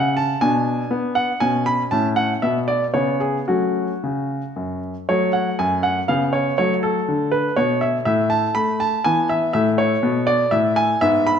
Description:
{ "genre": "classical-period piano sonatina", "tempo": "120 BPM", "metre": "3/4", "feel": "rubato", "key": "F# minor", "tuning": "A4 = 439 Hz", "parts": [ { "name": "clear baby grand piano", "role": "solo", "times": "0.0-11.4 s", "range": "F#2 to B5", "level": "-17 LUFS", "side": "equal", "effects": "none" } ], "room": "moderate recital hall reverb, RT60 1.4 s", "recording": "none", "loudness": "-17 LUFS", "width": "side -8 dB against mid", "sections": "0.0-5.1 A section; 5.1-11.4 B section", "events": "none", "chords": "0.4 G#dim/B; 1.4 C#5/B; 1.9 F#m/A; 2.4 N.C.; 2.9 C#5; 3.5 F#m; 6.1 C#7; 6.6 F#m; 8.1 N.C.; 9.1 E; 9.5 A" }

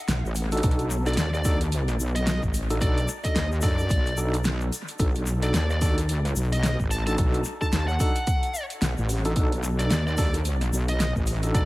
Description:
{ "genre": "glitch hop", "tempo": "110 BPM", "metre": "4/4", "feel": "swing 59% on 16ths", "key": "unclear", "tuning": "A4 = 440 Hz", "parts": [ { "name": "wobble bass", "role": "bass", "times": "0.1-11.7 s", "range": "A1 to F#2", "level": "-25 LUFS", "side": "equal", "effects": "chorus" }, { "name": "pop drum kit", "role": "drums", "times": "0.1-11.7 s", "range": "hi-hat, snare drum", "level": "-32 LUFS", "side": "equal", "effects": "small room reverb, dub echo" }, { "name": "tube shaker", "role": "percussion", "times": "0.1-11.7 s", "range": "none", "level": "-38 LUFS", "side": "left 4 dB", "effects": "none" }, { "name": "tine electric piano", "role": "stabs", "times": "0.5-11.7 s", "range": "D4 to A4", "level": "-32 LUFS", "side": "equal", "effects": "medium tremolo, sidechain pumping, dub echo" }, { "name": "electronic kick drum", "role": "drums", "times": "0.6-11.7 s", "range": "none", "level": "-25 LUFS", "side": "equal", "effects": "small room reverb" }, { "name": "high-gain lead guitar", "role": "melody", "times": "1.1-11.7 s", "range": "D5 to A5", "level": "-32 LUFS", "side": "left 1 dB", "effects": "distortion, dub echo" } ], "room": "light reverb, digital ambience", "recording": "echo-heavy mix, vinyl crackle", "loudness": "-22 LUFS", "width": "side -19 dB against mid", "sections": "0.0-11.7 A section", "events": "none", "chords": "0.0 B7#9" }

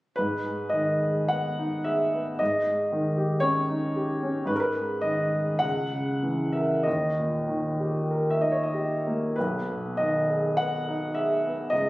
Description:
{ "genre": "classical, romantic nocturne for solo piano", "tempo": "46-59 BPM", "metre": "4/4", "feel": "rubato", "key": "G# minor", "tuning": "A4 = 438 Hz", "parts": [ { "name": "clear baby grand piano", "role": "solo", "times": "0.2-11.9 s", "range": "B1 to F#5", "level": "-24 LUFS", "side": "equal", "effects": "none" } ], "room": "moderate scoring stage reverb, RT60 1.6 s", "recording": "recorded on a phone in the room, club reverb", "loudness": "-24 LUFS", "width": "side -19 dB against mid", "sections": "0.2-11.9 A section", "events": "none", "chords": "0.2 G#m; 2.4 D#7/G#; 4.5 G#5; 5.6 A#dim/C#; 6.9 D#; 9.4 G#m/B" }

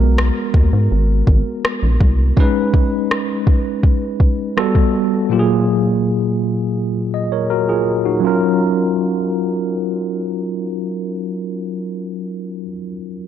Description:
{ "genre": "contemporary R&B", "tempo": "82 BPM", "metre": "4/4", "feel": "straight", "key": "F# major", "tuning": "A4 = 439 Hz", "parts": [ { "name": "barky tine electric piano", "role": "accompaniment", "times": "0.0-13.3 s", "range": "A#2 to D#5", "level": "-18 LUFS", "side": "equal", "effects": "slow stereo tremolo" }, { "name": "rubbery square bass", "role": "bass", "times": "0.0-2.3 s", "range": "G#1 to G#2", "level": "-14 LUFS", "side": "equal", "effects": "none" }, { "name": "smooth R&B drum kit", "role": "drums", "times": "0.2-4.9 s", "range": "kick drum, rim click", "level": "-15 LUFS", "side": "equal", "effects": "none" } ], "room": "light reverb", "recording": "dark, warm production, low-pass filter", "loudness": "-15 LUFS", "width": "side -10 dB against mid", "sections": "0.0-8.2 A section; 8.2-11.2 B section", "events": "filter sweep 0.0-8.2", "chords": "0.0 G#m9; 2.4 B69; 4.6 Gmaj9; 5.3 F#maj9/A#; 8.2 F#maj7" }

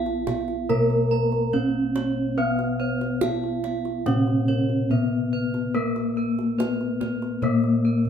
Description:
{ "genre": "Javanese gamelan", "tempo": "71 BPM", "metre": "4/4", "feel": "straight", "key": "unclear", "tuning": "A4 = 436 Hz", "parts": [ { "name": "gamelan-type bronze metallophone", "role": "melody", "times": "0.0-8.1 s", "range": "Bb3 to Bb4", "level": "-24 LUFS", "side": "left 1 dB", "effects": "none" }, { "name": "gamelan-type bronze metallophone", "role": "accompaniment", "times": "0.0-8.1 s", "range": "Db3-30c to Cb4+20c", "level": "-29 LUFS", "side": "right 2 dB", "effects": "none" }, { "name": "gamelan-type bossed gongs", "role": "arpeggios", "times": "0.0-8.1 s", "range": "Bb4 to F5-30c", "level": "-35 LUFS", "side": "left 4 dB", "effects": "none" }, { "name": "gamelan-type bronze metallophone", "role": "arpeggios", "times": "0.0-8.1 s", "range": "Bb4 to Bb5", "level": "-33 LUFS", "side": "right 3 dB", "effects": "none" }, { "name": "gamelan-type bossed gongs", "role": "bass", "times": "0.0-8.1 s", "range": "Bb1 to Cb5+20c", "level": "-28 LUFS", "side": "left 1 dB", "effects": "none" }, { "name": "kendang", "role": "percussion", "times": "0.1-8.1 s", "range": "none", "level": "-31 LUFS", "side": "right 2 dB", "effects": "none" } ], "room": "wet studio reverb, RT60 0.7 s", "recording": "band playing live in one room", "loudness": "-21 LUFS", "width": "side -8 dB against mid", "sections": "0.0-8.1 A section", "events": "none", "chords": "none" }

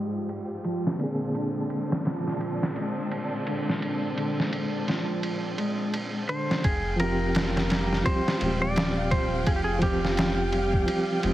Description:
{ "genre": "trip hop", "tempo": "85 BPM", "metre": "4/4", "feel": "swing 59% on 16ths", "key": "F dorian", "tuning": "A4 = 440 Hz", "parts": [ { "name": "overdriven reed electric piano", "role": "accompaniment", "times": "0.0-11.3 s", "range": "D3 to Ab4", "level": "-30 LUFS", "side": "equal", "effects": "tremolo, vintage 12-bit sampler grit" }, { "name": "bright studio string section", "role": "sustained chords", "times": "0.0-11.3 s", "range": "Ab2 to G5", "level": "-33 LUFS", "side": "equal", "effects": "none" }, { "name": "mellow electric guitar", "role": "arpeggios", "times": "0.0-11.3 s", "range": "D3 to Ab3", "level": "-32 LUFS", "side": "right 1 dB", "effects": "low-pass filter, digital delay" }, { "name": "trip hop sampler-style drum kit", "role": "drums", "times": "0.3-11.3 s", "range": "kick drum, ride cymbal, snare drum", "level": "-29 LUFS", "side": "equal", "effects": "low-pass filter on cymbals, low-pass filter on snare, low-pass filter on kick" }, { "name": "clean lap steel guitar", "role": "melody", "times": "6.3-11.3 s", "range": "G4 to D5", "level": "-30 LUFS", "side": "equal", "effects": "tape echo" }, { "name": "warm sub bass", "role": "bass", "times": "6.6-11.3 s", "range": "Eb1 to F1", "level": "-30 LUFS", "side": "equal", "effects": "tube saturation" } ], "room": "light reverb", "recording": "heavily compressed radio sound, vinyl crackle, low-pass filter", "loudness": "-24 LUFS", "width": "side -14 dB against mid", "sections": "0.0-6.6 A section; 6.6-11.3 B section", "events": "filter sweep on clean electric guitar 0.0-6.6; filter sweep 0.0-6.6", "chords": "0.0 Fmadd9; 1.0 Bb9; 6.6 Fsus2" }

